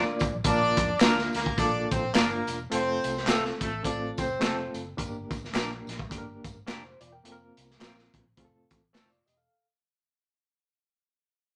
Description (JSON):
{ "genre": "uptempo 1960s-style soul", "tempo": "106 BPM", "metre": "4/4", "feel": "swing 58% on 8ths", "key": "Bb major", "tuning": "A4 = 440 Hz", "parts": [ { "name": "clear horn section", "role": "second line", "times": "0.0-4.7 s", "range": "A3 to D5", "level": "-32 LUFS", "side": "equal", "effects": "none" }, { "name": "reed electric piano", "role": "accompaniment", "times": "0.0-9.7 s", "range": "A3 to G5", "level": "-36 LUFS", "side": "equal", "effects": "fast tremolo" }, { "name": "semi-hollow electric guitar", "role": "stabs", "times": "0.0-9.1 s", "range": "A3 to Bb4", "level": "-33 LUFS", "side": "equal", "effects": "none" }, { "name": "vintage muted fingered electric bass", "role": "bass", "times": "0.2-9.5 s", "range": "E1 to F2", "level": "-41 LUFS", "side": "equal", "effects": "none" }, { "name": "crunchy breakbeat drum kit", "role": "drums", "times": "0.2-9.4 s", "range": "hi-hat, kick drum, snare drum", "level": "-31 LUFS", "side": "equal", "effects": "none" }, { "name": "tambourine and handclaps", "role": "percussion", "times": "0.2-9.4 s", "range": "none", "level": "-41 LUFS", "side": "equal", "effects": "none" } ], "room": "moderate studio reverb, RT60 0.8 s", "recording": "none", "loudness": "-28 LUFS", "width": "mono", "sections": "0.5-9.5 A section", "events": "fade-out 0.5-9.5", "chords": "0.5 Bb; 2.7 F; 5.0 Gm; 7.2 Fsus4; 8.4 F", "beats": "| 0.45 1.02 1.58 2.15 | 2.71 3.28 3.85 4.41 | 4.98 5.54 6.11 6.68 | 7.24 7.81 8.38 8.94" }